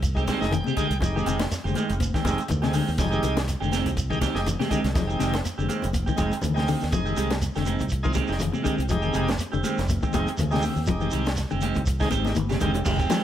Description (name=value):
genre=afrobeat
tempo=122 BPM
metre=4/4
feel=swing 56% on 16ths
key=F dorian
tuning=A4 = 444 Hz
part: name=fingered electric bass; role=bass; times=0.0-13.1 s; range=F1 to Eb2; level=-28 LUFS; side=equal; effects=none
part: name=compact cocktail drum kit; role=drums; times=0.0-13.2 s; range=crash cymbal, hi-hat, kick drum, snare drum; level=-30 LUFS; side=equal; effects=none
part: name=shekere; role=percussion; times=0.0-13.2 s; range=none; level=-35 LUFS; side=right 2 dB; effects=none
part: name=bright tonewheel organ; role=accompaniment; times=0.1-12.7 s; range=Ab3 to G5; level=-31 LUFS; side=equal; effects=slow rotary speaker, overdrive
part: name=clean electric guitar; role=stabs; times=0.2-13.2 s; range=Eb3 to G4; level=-28 LUFS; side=right 5 dB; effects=phaser
part: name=congas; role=percussion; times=0.3-13.2 s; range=none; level=-32 LUFS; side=left 4 dB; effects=none
part: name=semi-hollow electric guitar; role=arpeggios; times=0.5-13.2 s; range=C3 to F3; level=-30 LUFS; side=left 7 dB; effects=tremolo
room=light reverb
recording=none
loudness=-22 LUFS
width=side -11 dB against mid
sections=0.0-12.9 A section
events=tonewheel organ fill 0.0-1.0; drum fill 12.2-12.9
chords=0.0 Fm9